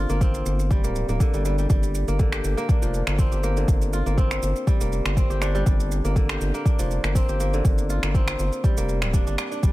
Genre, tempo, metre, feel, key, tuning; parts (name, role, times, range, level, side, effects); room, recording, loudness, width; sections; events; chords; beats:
afro house; 121 BPM; 4/4; swing 54% on 16ths; G minor; A4 = 439 Hz
kora; arpeggios; 0.0-9.7 s; D3 to G4; -27 LUFS; equal; sidechain pumping, dub echo
round analog bass; bass; 0.0-9.7 s; D1 to G1; -25 LUFS; equal; sidechain pumping
electronic shaker and finger snaps; drums; 0.1-9.7 s; -32 LUFS; right 1 dB; overdrive
electronic kick drum; drums; 0.2-9.7 s; -20 LUFS; equal; overdrive
digital ambience; -20 LUFS; side -17 dB against mid
0.0-9.7 A section
0.0 Gm7
0.21 0.71 1.20 | 1.70 2.19 2.69 3.19 | 3.68 4.18 4.67 5.17 | 5.67 6.16 6.66 7.15 | 7.65 8.14 8.64 9.14 | 9.63